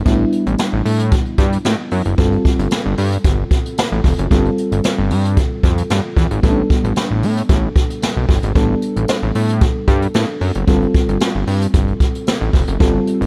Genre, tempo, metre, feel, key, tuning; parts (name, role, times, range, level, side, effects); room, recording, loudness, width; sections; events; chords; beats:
early-eighties boogie funk; 113 BPM; 4/4; straight; A4 = 440 Hz
FM electric piano with soft pad layer; accompaniment; 0.0-13.3 s; G3 to A4; -23 LUFS; equal; chorus
fat analog bass; bass; 0.0-13.3 s; F1 to A2; -20 LUFS; equal
jazz brush drum kit; drums; 0.1-13.3 s; hi-hat, kick drum, snare drum; -19 LUFS; equal
studio ambience; dark, warm production; -16 LUFS; mono
0.0-13.3 A section
0.0 A9sus4; 2.2 G9sus4; 6.4 A9sus4; 10.7 G9sus4
| 0.06 0.59 1.12 1.65 | 2.18 2.71 3.25 3.78 | 4.31 4.84 5.37 5.90 | 6.43 6.96 7.49 8.02 | 8.55 9.09 9.62 10.15 | 10.68 11.21 11.74 12.27 | 12.80